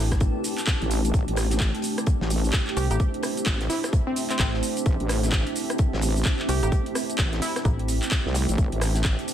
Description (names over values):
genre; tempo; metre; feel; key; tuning
bass house; 129 BPM; 4/4; swing 61% on 16ths; A minor; A4 = 437 Hz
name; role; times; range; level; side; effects
deep dark ambient pad; sustained chords; 0.0-9.3 s; A3 to C5; -32 LUFS; right 2 dB; chorus, built-in reverb, vintage 12-bit sampler grit, sidechain pumping
metallic FM bass; bass; 0.0-8.0 s; A1 to C2; -25 LUFS; equal; sidechain pumping
granular cloud pad; texture; 0.0-9.3 s; C4 to A5; -32 LUFS; right 2 dB; built-in reverb, sidechain pumping
electronic kick drum; drums; 0.1-9.2 s; none; -24 LUFS; equal; none
garage drum kit; drums; 0.1-9.3 s; handclaps, hi-hat, rim click, shaker; -29 LUFS; right 1 dB; overdrive
tight metal drum kit; drums; 0.1-9.3 s; hi-hat, snare drum; -40 LUFS; left 3 dB; none
wobble bass; bass; 0.8-9.2 s; A1 to C2; -25 LUFS; equal; chorus, tube saturation, sidechain pumping
glassy wavetable pluck; melody; 2.8-7.5 s; C4 to G4; -31 LUFS; equal; chorus, ping-pong delay
room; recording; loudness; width
little or no reverb; none; -22 LUFS; side -10 dB against mid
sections
0.0-9.3 A section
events
none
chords
0.0 Am